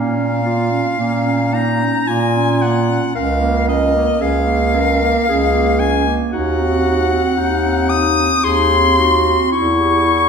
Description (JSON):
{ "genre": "classical, lyrical piece for single-reed quartet", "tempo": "56 BPM", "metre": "3/4", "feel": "rubato", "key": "Bb minor", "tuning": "A4 = 440 Hz", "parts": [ { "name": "clear soprano saxophone", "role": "melody", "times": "0.0-10.3 s", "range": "Eb5 to Eb6", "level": "-17 LUFS", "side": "left 3 dB", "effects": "none" }, { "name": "warm clarinet", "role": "second line", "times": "0.0-10.3 s", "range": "Bb3 to G4", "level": "-21 LUFS", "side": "right 6 dB", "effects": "none" }, { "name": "warm clarinet", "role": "accompaniment", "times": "0.0-10.3 s", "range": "Db4 to Bb4", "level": "-21 LUFS", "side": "equal", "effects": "none" }, { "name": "bright bass clarinet", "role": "bass", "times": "0.0-10.3 s", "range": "Db2 to Bb2", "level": "-19 LUFS", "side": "equal", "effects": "none" } ], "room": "wet recital hall reverb, RT60 1.4 s", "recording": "heard from further back in the room", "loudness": "-13 LUFS", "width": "side -6 dB against mid", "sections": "0.0-10.3 A section", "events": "none", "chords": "0.0 Bbm; 3.1 Bbm/Db; 6.3 Cdim/Eb; 9.5 Em6" }